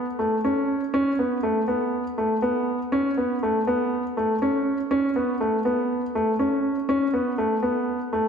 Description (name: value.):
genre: electronica.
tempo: 121 BPM.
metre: 4/4.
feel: straight.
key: unclear.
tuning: A4 = 439 Hz.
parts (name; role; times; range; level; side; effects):
warm upright piano; solo; 0.0-8.3 s; A3 to C#4; -22 LUFS; equal; none.
room: wet scoring stage reverb, RT60 1.8 s.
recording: none.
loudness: -22 LUFS.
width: side -7 dB against mid.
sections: 0.0-8.3 A section.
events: none.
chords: none.